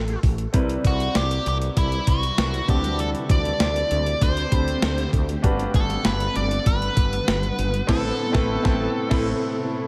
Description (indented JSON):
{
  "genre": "1980s-style pop",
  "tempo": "98 BPM",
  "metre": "4/4",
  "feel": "straight",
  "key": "D mixolydian",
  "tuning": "A4 = 440 Hz",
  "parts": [
    { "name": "nasal lead guitar with a parked wah", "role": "melody", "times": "0.0-9.9 s", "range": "E4 to D5", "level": "-29 LUFS", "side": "equal", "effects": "overdrive, analog delay" },
    { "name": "clear concert grand piano", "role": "accompaniment", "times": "0.0-9.9 s", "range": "G2 to B5", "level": "-31 LUFS", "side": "equal", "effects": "lush chorus" },
    { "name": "woody fretless electric bass", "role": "bass", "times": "0.0-9.3 s", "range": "G1 to D2", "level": "-28 LUFS", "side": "equal", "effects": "subtle chorus" },
    { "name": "clean 12-bit digital drum machine", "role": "drums", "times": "0.1-9.3 s", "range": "crash cymbal, hi-hat, kick drum, snare drum", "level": "-25 LUFS", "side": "equal", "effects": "none" },
    { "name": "shimmering ambient pad", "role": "sustained chords", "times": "1.5-9.9 s", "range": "C3 to F#5", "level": "-34 LUFS", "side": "equal", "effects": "chorus, built-in reverb" }
  ],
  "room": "moderate plate reverb, RT60 2.7 s",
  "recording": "dreamy mix soaked in reverb",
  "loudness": "-22 LUFS",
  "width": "mono",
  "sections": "0.0-9.9 A section",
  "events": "band accent 7.9-9.9",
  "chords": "0.0 Amadd9; 0.5 Cmaj7; 2.7 D7sus4; 5.4 Gmaj7; 7.9 Amadd9",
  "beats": "| 0.54 1.15 1.76 2.38 | 2.99 3.60 4.21 4.83 | 5.44 6.05 6.66 7.28 | 7.89 8.50 9.11 9.72"
}